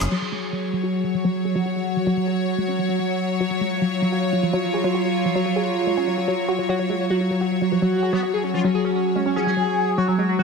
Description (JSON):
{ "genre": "trance", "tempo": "146 BPM", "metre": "4/4", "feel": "straight", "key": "unclear", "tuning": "A4 = 441 Hz", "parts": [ { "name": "overdriven synth lead", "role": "melody", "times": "0.0, 6.7-10.4 s", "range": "F#3 to G#4", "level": "-25 LUFS", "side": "left 1 dB", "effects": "distortion, phaser, ping-pong delay" }, { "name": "evolving wavetable pad", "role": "sustained chords", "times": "0.0-10.4 s", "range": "F#3 to G#4", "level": "-24 LUFS", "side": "equal", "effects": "chorus, built-in reverb" }, { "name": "woody wave-folded pluck", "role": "riff", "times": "0.1-10.4 s", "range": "E#3 to G#4", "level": "-25 LUFS", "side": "moving between left 4 dB and right 3 dB", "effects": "chorus, auto-pan, digital delay" }, { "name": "rich studio string section", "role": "texture", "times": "0.1-10.4 s", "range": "F#3 to C#5", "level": "-27 LUFS", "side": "left 2 dB", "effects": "none" }, { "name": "metallic wobble bass", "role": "second line", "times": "8.1-9.5 s", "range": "B3 to E#4", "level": "-35 LUFS", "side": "left 2 dB", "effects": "analog chorus, high-pass filter, tape echo" } ], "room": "wet lush hall reverb, RT60 1.9 s, digital ambience", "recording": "dense, heavily limited modern master", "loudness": "-20 LUFS", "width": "side -4 dB against mid", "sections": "0.1-10.4 A section", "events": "filter sweep on synth arpeggio sound 0.1-10.4", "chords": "0.1 F#5" }